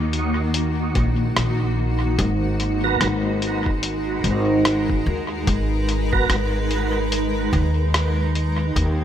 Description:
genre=ambient dub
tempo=73 BPM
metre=4/4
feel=swing 59% on 16ths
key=G# minor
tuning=A4 = 439 Hz
part: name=granular cloud pad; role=sustained chords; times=0.0-9.0 s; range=D#3 to B4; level=-24 LUFS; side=equal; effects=built-in reverb
part: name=upright bass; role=bass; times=0.0-9.0 s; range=G#1 to D#2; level=-21 LUFS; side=equal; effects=none
part: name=lo-fi sampler-style drum kit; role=drums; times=0.1-9.0 s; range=hi-hat, rim click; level=-27 LUFS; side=left 1 dB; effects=dub echo
part: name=electronic kick drum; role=drums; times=1.0-9.0 s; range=none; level=-24 LUFS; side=equal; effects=none
part: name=tonewheel organ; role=stabs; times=2.8-6.4 s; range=F#3 to A#4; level=-29 LUFS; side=right 5 dB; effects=chorus vibrato, slow rotary speaker, dub echo
part: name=bubbling stepped-filter texture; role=texture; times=9.0 s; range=A#5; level=-49 LUFS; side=right 8 dB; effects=none
room=light reverb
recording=none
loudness=-19 LUFS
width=side -10 dB against mid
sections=0.0-9.0 A section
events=none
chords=0.0 D#m; 2.2 G#m9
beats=0.54 1.36 | 2.19 3.01 3.83 4.65 | 5.47 6.29 7.12 7.94 | 8.76

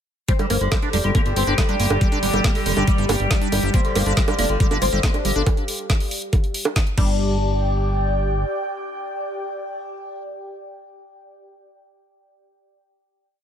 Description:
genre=psychedelic trance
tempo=139 BPM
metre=4/4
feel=straight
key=unclear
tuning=A4 = 441 Hz
part: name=oud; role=melody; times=0.3-10.2 s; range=D3 to D4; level=-26 LUFS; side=left 1 dB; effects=phaser, sidechain pumping, digital delay
part: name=overtone-sweeping drone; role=sustained chords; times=1.0-5.5 s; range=G3 to G4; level=-29 LUFS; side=equal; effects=chorus, built-in reverb, sidechain pumping
part: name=liquid acid bass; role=riff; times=0.3-7.4 s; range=G3 to D4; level=-27 LUFS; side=moving between left 3 dB and right 3 dB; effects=chorus, auto-pan, sidechain pumping, tape echo
part: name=drum and bass drum kit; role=drums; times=0.3-7.1 s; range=bongos, crash cymbal, hi-hat, snare drum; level=-25 LUFS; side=right 2 dB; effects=overdrive
part: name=electronic kick drum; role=drums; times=0.3-7.1 s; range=none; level=-20 LUFS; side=equal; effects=overdrive
part: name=airy breathy pad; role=texture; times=0.3-10.6 s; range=G4 to G5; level=-29 LUFS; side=equal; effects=chorus, sidechain pumping
part: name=fat analog bass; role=bass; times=0.5-8.4 s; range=F1 to G1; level=-22 LUFS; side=equal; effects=none
room=digital ambience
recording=none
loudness=-18 LUFS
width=side -9 dB against mid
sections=0.3-7.2 drop; 7.2-10.6 final note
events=drop 0.3-7.2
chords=0.3 G5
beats=| 0.28 0.72 1.15 1.58 | 2.01 2.44 2.88 3.31 | 3.74 4.17 4.60 5.03 | 5.46 5.90 6.33 6.76 | 7.19 7.62 8.05 8.49 | 8.92 9.35 9.78 10.21

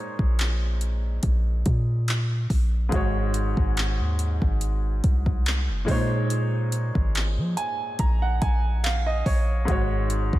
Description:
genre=contemporary R&B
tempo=71 BPM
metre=4/4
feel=swing 54% on 16ths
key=Bb minor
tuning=A4 = 440 Hz
part: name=clear grand piano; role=accompaniment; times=0.0-10.4 s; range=Ab2 to Bb5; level=-29 LUFS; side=right 1 dB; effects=none
part: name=warm 808-style bass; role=bass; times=0.2-10.4 s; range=Gb1 to F3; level=-24 LUFS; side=equal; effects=none
part: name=smooth R&B drum kit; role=drums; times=0.2-10.4 s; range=handclaps, hi-hat, kick drum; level=-26 LUFS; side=equal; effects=overdrive
room=digital ambience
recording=none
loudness=-22 LUFS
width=side -16 dB against mid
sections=0.0-10.4 A section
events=grand piano fill 7.1-9.7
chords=0.0 Bbm11; 2.9 Ab7sus4; 5.9 Bbm11; 9.7 Ab7sus4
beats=0.39 1.23 2.08 | 2.92 3.77 4.61 5.46 | 6.30 7.15 7.99 8.84 | 9.68

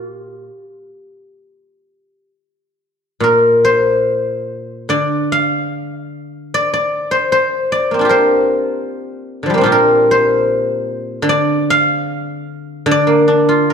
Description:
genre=chinese traditional, Chinese solo plucked strings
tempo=75 BPM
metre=4/4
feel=uneven beats, rubato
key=unclear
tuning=A4 = 440 Hz
part: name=guzheng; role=solo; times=0.0-13.7 s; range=Bb2 to F5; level=-13 LUFS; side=equal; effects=none
room=light reverb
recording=dark, warm production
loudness=-12 LUFS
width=side -6 dB against mid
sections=0.0-3.2 A section; 3.2-13.7 B section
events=none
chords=none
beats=0.48 1.38 2.32 | 3.23 4.07 4.90 5.73 | 6.53 7.32 8.12 8.90 | 9.68 10.46 11.25 12.07 | 12.89 13.71

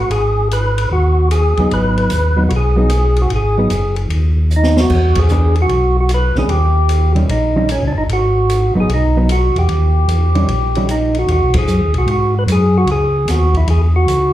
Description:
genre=soul jazz organ trio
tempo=150 BPM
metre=4/4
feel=swing 66% on 8ths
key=G# minor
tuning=A4 = 438 Hz
part: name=percussive tonewheel organ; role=melody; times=0.0-14.3 s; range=C#4 to B4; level=-17 LUFS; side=equal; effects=slow rotary speaker, slapback echo
part: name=mellow tonewheel organ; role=bass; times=0.0-14.3 s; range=F#1 to G#2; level=-14 LUFS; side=equal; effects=overdrive, chorus vibrato, slow rotary speaker
part: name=open jazz drum kit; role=drums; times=0.1-14.2 s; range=crash cymbal, hi-hat, kick drum, ride cymbal, snare drum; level=-23 LUFS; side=left 1 dB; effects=none
part: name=hollow-body jazz guitar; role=accompaniment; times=1.6-10.9 s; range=D#3 to G#4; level=-20 LUFS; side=right 1 dB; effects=none
room=small room ambience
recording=live gig heard through the venue's PA, club reverb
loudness=-12 LUFS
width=side -13 dB against mid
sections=0.0-11.3 A section; 11.3-14.3 A section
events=drum fill 4.5-4.9; band accent 5.1, 11.5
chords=0.1 G#m7; 4.9 E7; 6.5 D#7b9; 8.1 G#m7; 9.7 D#7b9; 11.3 G#m7; 12.9 C#m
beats=| 0.11 0.51 0.91 1.31 | 1.71 2.11 2.51 2.91 | 3.31 3.71 4.11 4.51 | 4.91 5.31 5.71 6.10 | 6.50 6.90 7.30 7.70 | 8.10 8.50 8.90 9.30 | 9.70 10.09 10.49 10.89 | 11.29 11.69 12.09 12.48 | 12.88 13.28 13.68 14.08

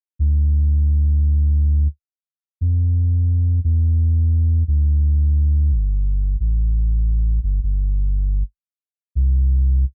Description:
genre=chillout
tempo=87 BPM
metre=4/4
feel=swing 57% on 16ths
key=D minor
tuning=A4 = 439 Hz
part: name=warm sub bass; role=bass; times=0.2-9.8 s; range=G1 to F2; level=-18 LUFS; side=equal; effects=none
room=little or no reverb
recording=dark, warm production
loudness=-19 LUFS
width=mono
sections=0.2-9.9 A section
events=filter sweep on sub bass 0.2-9.9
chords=none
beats=| 0.19 0.88 1.57 2.26 | 2.95 3.64 4.33 5.02 | 5.71 6.40 7.09 7.78 | 8.47 9.16

